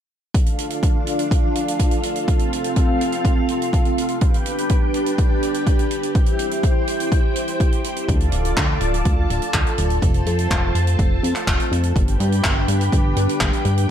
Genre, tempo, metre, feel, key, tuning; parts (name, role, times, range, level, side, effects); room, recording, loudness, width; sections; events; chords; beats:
italo disco; 124 BPM; 4/4; straight; D dorian; A4 = 441 Hz
string machine, full ensemble; sustained chords; 0.3-13.9 s; C4 to A5; -22 LUFS; equal; ensemble chorus
electronic kick drum; drums; 0.3-13.5 s; -19 LUFS; equal
natural country drum kit; drums; 0.3-13.9 s; handclaps, hi-hat; -27 LUFS; right 1 dB
chorused synth bass; bass; 8.1-13.9 s; D1 to G2; -20 LUFS; equal; tube saturation
light reverb, small room ambience; dark, warm production; -17 LUFS; side -9 dB against mid
0.3-13.9 A section
0.3 Dm; 2.3 F; 4.2 G; 6.2 C; 8.1 Dm; 10.0 F; 12.0 G
| 0.34 0.83 1.31 1.80 | 2.28 2.76 3.25 3.73 | 4.22 4.70 5.18 5.67 | 6.15 6.63 7.12 7.60 | 8.09 8.57 9.05 9.54 | 10.02 10.51 10.99 11.47 | 11.96 12.44 12.93 13.41 | 13.89